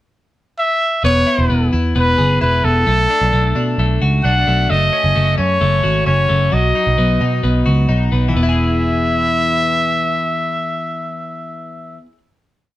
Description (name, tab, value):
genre	jangly indie pop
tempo	131 BPM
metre	4/4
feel	straight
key	E major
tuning	A4 = 440 Hz
part	bright trumpet	melody	0.6-12.0 s	A4 to F#5	-17 LUFS	equal	none
part	twelve-string electric guitar	arpeggios	1.0-12.2 s	E3 to G#4	-20 LUFS	left 2 dB	none
part	vintage muted picked electric bass	bass	1.0-12.0 s	E1 to B2	-16 LUFS	right 1 dB	none
room	light reverb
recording	band playing live in one room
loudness	-13 LUFS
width	side -14 dB against mid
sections	0.0-1.0 pickup bar; 1.0-8.3 verse; 8.3-12.0 final chord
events	none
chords	0.0 N.C.; 1.0 E; 2.9 Bm7; 4.7 F#m; 6.5 B; 8.3 E